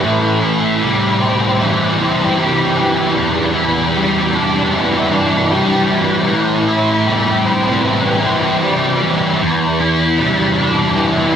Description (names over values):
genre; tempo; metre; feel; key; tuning
rock; 77 BPM; 4/4; straight; A minor; A4 = 441 Hz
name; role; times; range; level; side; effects
fuzz guitar; solo; 0.0-11.4 s; E2 to E4; -12 LUFS; equal; distortion, ensemble chorus
room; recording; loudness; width
moderate recital hall reverb, RT60 1.3 s; dense, heavily limited modern master; -12 LUFS; side -8 dB against mid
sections
0.0-11.4 A section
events
none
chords
0.0 Am7; 3.2 Em7; 6.3 Am7; 9.4 Em7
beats
| 0.03 0.81 1.59 2.37 | 3.16 3.94 4.72 5.50 | 6.28 7.06 7.84 8.62 | 9.40 10.18 10.96